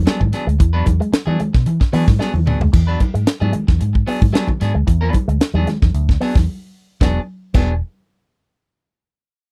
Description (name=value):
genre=funk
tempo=112 BPM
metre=4/4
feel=straight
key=E mixolydian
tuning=A4 = 440 Hz
part: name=vintage muted fingered electric bass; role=bass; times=0.0-7.8 s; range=E1 to E3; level=-20 LUFS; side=equal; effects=none
part: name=clean electric guitar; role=accompaniment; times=0.1-7.7 s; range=F#3 to B4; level=-27 LUFS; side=equal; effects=none
part: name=electric guitar with an envelope filter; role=riff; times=0.1-7.7 s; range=E3 to B3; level=-26 LUFS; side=equal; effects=none
part: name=tight funk drum kit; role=drums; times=0.1-7.7 s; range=crash cymbal, hi-hat, kick drum, snare drum, toms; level=-18 LUFS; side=equal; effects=none
part: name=congas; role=percussion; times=0.2-7.8 s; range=none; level=-29 LUFS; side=equal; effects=none
room=little or no reverb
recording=dry, close 1970s-style studio recording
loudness=-17 LUFS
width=mono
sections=0.0-2.7 A section; 2.7-7.0 B section; 7.0-9.2 C section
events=drum fill 2.2-2.7; break 6.5-7.0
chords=0.0 E9